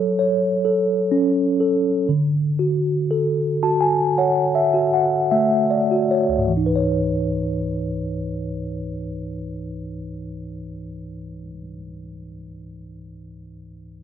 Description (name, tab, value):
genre	pop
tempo	48-65 BPM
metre	4/4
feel	straight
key	C# minor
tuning	A4 = 440 Hz
part	mellow tine electric piano	accompaniment	0.0-14.0 s	C#2 to A5	-20 LUFS	equal	medium stereo tremolo
room	light reverb, digital ambience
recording	dry, close 1970s-style studio recording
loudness	-18 LUFS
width	side -9 dB against mid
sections	0.0-6.5 A section; 6.5-11.5 B section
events	slowing down 0.0-6.5; tine electric piano fill 3.1-6.5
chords	0.0 F#m; 2.1 Dmaj7; 6.5 C#m9